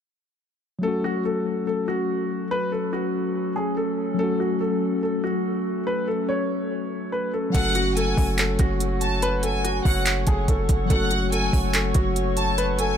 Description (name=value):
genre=hip hop, trap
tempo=143 BPM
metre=4/4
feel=half-time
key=F# minor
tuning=A4 = 440 Hz
part: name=dark grand piano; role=melody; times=0.8-13.0 s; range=F#4 to C#5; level=-27 LUFS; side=equal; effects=tape echo
part: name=mellow tine electric piano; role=accompaniment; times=0.8-13.0 s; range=F#3 to F#4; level=-28 LUFS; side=left 4 dB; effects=medium stereo tremolo
part: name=warbly tape-like pad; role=sustained chords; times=1.5-13.0 s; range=F#3 to C#6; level=-30 LUFS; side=left 1 dB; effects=chorus, built-in reverb
part: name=warm studio violin section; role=second line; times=7.5-13.0 s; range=F#5 to A5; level=-28 LUFS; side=equal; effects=tape echo
part: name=hard-hitting 808-style bass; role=bass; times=7.5-13.0 s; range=F#1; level=-25 LUFS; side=right 1 dB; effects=none
part: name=trap drum kit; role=drums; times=7.5-12.9 s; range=crash cymbal, handclaps, hi-hat, kick drum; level=-23 LUFS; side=right 1 dB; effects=none
room=little or no reverb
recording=none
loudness=-21 LUFS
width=side -8 dB against mid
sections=0.8-7.5 A section; 7.5-13.0 B section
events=none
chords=0.8 F#m